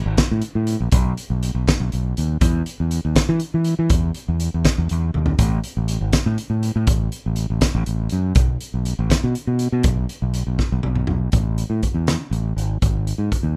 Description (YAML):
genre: math rock and midwest emo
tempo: 81 BPM (dotted quarters)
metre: 6/8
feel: straight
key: unclear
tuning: A4 = 441 Hz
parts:
  - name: growling fingered electric bass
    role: bass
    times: 0.1-13.6 s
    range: G#1 to E3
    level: -22 LUFS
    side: equal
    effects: overdrive
  - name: loose indie drum kit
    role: drums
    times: 0.2-13.4 s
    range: hi-hat, kick drum, snare drum, toms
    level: -23 LUFS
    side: equal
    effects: none
room: little or no reverb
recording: rough home demo mix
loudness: -21 LUFS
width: mono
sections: 0.0-11.3 A section; 11.3-13.6 B section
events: drum fill 5.1, 10.6-11.3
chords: none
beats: 0.18 | 0.93 1.67 | 2.41 3.16 | 3.90 4.65 | 5.39 6.13 | 6.88 7.62 | 8.37 9.11 | 9.85 10.60 | 11.34 12.08 | 12.82